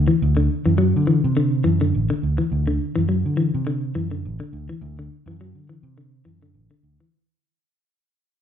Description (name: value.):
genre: afrobeat.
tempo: 104 BPM.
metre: 4/4.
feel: swing 56% on 16ths.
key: D mixolydian.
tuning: A4 = 440 Hz.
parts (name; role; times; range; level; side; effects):
semi-hollow electric guitar; arpeggios; 0.0-7.1 s; D3 to F#3; -22 LUFS; left 4 dB; none.
fingered electric bass; bass; 0.0-7.0 s; A1 to D3; -21 LUFS; right 2 dB; none.
room: light reverb.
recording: band playing live in one room.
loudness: -18 LUFS.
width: side -9 dB against mid.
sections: 0.0-7.1 A section.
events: fade-out 0.0-7.1.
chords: 0.0 D7.